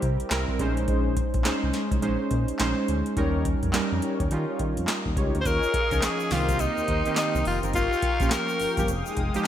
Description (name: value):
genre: R&B, new jack swing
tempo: 105 BPM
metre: 4/4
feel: swing 62% on 16ths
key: unclear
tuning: A4 = 440 Hz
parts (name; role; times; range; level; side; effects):
- warm analog keys; accompaniment; 0.0-9.5 s; Eb3 to Eb5; -28 LUFS; right 2 dB; chorus
- mellow synth brass; stabs; 0.0-9.2 s; Db4 to Db5; -35 LUFS; left 3 dB; chorus
- smooth synth bass; bass; 0.0-9.3 s; F1 to Eb3; -28 LUFS; equal; none
- booming analog drum machine; drums; 0.0-9.4 s; handclaps, hi-hat, kick drum, snare drum; -28 LUFS; equal; overdrive
- raspy tenor saxophone; melody; 5.4-8.9 s; Eb4 to C5; -26 LUFS; left 1 dB; none
- brassy analog pad; sustained chords; 5.5-9.5 s; Ab3 to Eb6; -33 LUFS; left 1 dB; chorus
- egg shaker; percussion; 5.5-9.4 s; none; -43 LUFS; left 9 dB; none
room: moderate lush hall reverb, RT60 1.7 s, digital ambience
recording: bright 1980s-style digital production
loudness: -23 LUFS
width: side -10 dB against mid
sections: 0.0-5.5 A section; 5.5-9.5 B section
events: none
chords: 0.0 C7; 0.6 Bbm11; 3.2 Eb7; 5.5 Eb9sus4; 6.3 Cm7; 7.7 Gm7b5; 8.9 Fm9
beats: 0.31 | 0.88 1.45 2.02 2.59 | 3.17 3.74 4.31 4.88 | 5.45 6.02 6.59 7.17 | 7.74 8.31 8.88 9.45